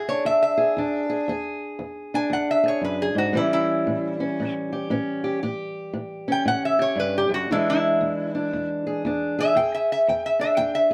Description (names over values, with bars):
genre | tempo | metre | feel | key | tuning
acoustic country blues, solo or duo | 116 BPM | 4/4 | swing 63% on 8ths | unclear | A4 = 439 Hz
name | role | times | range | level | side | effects
metal-body resonator slide guitar | melody | 0.0-10.9 s | E4 to G#5 | -24 LUFS | equal | plate reverb
fingerpicked steel-string acoustic guitar | accompaniment | 0.0-10.9 s | E2 to G#4 | -28 LUFS | equal | none
room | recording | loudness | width
moderate studio reverb, RT60 0.5 s | dark, warm production | -23 LUFS | mono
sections
0.0-10.9 A section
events
resonator guitar played with a steel bar solo 0.0-10.9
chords
0.0 E7; 3.4 A7; 7.5 E7